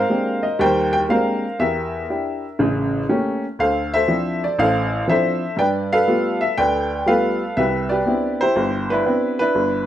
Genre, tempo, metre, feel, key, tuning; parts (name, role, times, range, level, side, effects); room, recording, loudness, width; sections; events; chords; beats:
solo jazz; 121 BPM; 4/4; swing 66% on 8ths; C major; A4 = 440 Hz
clear upright piano; solo; 0.0-9.9 s; G1 to G5; -17 LUFS; equal
moderate studio reverb, RT60 0.9 s; -17 LUFS; side -11 dB against mid
0.0-9.9 A section
0.0 Abmaj9#11; 1.6 Em7b5; 2.6 A7b9; 3.6 Dm9; 5.6 G9; 7.6 Cmaj9
0.09 0.59 1.09 | 1.59 2.09 2.58 3.08 | 3.58 4.08 4.58 5.08 | 5.57 6.07 6.57 7.07 | 7.56 8.06 8.56 9.05 | 9.55